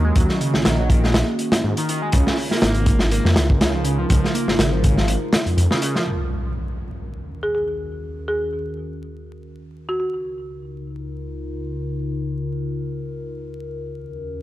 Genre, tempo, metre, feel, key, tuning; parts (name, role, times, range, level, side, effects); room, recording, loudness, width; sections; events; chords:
breakbeat, breaks; 122 BPM; 4/4; swing 54% on 16ths; A4 = 440 Hz
warbly tape-like pad; sustained chords; 0.0-14.4 s; Db2 to Eb5; -28 LUFS; equal; chorus, built-in reverb, sidechain pumping
overdriven synth lead; riff; 0.0-6.0 s; Db3 to Bb3; -26 LUFS; right 1 dB; phaser, tube saturation, tape echo
detuned saw bass; bass; 0.0-5.7 s; Ab1 to Ab2; -20 LUFS; equal
crunchy breakbeat drum kit; drums; 0.2-6.1 s; hi-hat, kick drum, snare drum; -19 LUFS; equal
impact; sound effects; 6.1-8.0 s; -30 LUFS; equal
folk marimba with medium mallets; melody; 7.4-10.1 s; Gb4 to Ab4; -25 LUFS; equal; AM radio sound, tape echo
small room ambience; dry, gritty hardware recording, vinyl crackle; -18 LUFS; side -15 dB against mid
0.0-6.1 A section; 6.1-14.4 B section
kick drops out 5.1-6.1; impact 6.1-8.0
0.0 Ebm7; 2.1 Db69; 6.1 Ebm7; 10.0 Db69